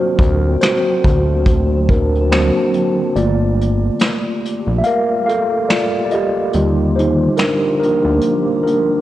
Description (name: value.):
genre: lo-fi hip hop.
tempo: 71 BPM.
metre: 4/4.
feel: swing 57% on 16ths.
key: G minor.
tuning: A4 = 440 Hz.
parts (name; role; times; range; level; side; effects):
mellow tine electric piano; accompaniment; 0.0-9.0 s; D3 to F5; -16 LUFS; equal; medium stereo tremolo, low-pass filter.
granular cloud pad; sustained chords; 0.0-9.0 s; D3 to A5; -26 LUFS; equal; built-in reverb, low-pass filter.
fat analog bass; bass; 0.2-8.2 s; G1 to Eb2; -16 LUFS; equal; transformer saturation.
vintage brush drum kit; drums; 0.2-8.9 s; finger snaps, hi-hat, kick drum, snare drum; -18 LUFS; equal; none.
room: light reverb, small room ambience.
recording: worn, warbling old tape, cassette tape, warbly pitch drift.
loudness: -13 LUFS.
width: side -14 dB against mid.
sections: 0.0-3.2 A section; 3.2-9.0 B section.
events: tine electric piano solo 0.0-3.2, 3.2-9.0; kick muted 3.2-9.0.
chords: 0.0 D7b13; 3.2 Gm7; 6.5 Ebmaj9.